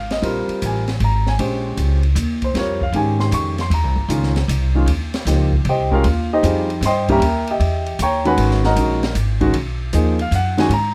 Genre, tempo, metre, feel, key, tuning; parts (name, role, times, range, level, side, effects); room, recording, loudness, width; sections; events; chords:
modal jazz; 155 BPM; 3/4; swing 67% on 8ths; Bb dorian; A4 = 440 Hz
warm grand piano; accompaniment; 0.0-10.9 s; Eb3 to Db6; -22 LUFS; equal
upright bass; bass; 0.0-10.9 s; G1 to Ab2; -21 LUFS; equal
open jazz drum kit; drums; 0.1-10.8 s; hi-hat, kick drum, ride cymbal, snare drum; -29 LUFS; equal
little or no reverb; close, detailed microphones; -18 LUFS; mono
0.0-8.4 A section; 8.4-10.9 A section
0.0 Bbm9; 3.7 Cm; 7.2 Eb7b9; 8.4 G#m11